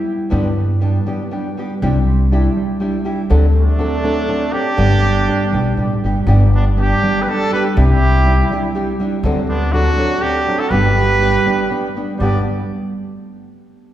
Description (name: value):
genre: mexican folk, mariachi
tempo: 121 BPM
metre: 3/4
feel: straight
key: G major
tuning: A4 = 440 Hz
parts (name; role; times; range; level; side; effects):
- concert harp; arpeggios; 0.0-13.3 s; G3 to G5; -22 LUFS; right 2 dB; none
- nylon-string guitar; accompaniment; 0.3-12.4 s; G2 to A4; -22 LUFS; left 1 dB; none
- upright bass; bass; 0.3-12.4 s; G1 to G2; -16 LUFS; equal; none
- clear trumpet; melody; 3.5-12.4 s; D4 to D5; -19 LUFS; right 1 dB; none
- mellow trumpet; second line; 3.5-12.4 s; A3 to G4; -24 LUFS; right 4 dB; none
room: wet scoring stage reverb, RT60 1.7 s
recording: heard from further back in the room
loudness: -14 LUFS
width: side -12 dB against mid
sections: 0.0-6.3 A section; 6.3-12.2 B section; 12.2-13.7 C section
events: none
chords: 0.3 G; 1.8 Cadd9; 3.3 D7; 4.8 G; 7.8 Cadd9; 9.2 D7; 10.7 G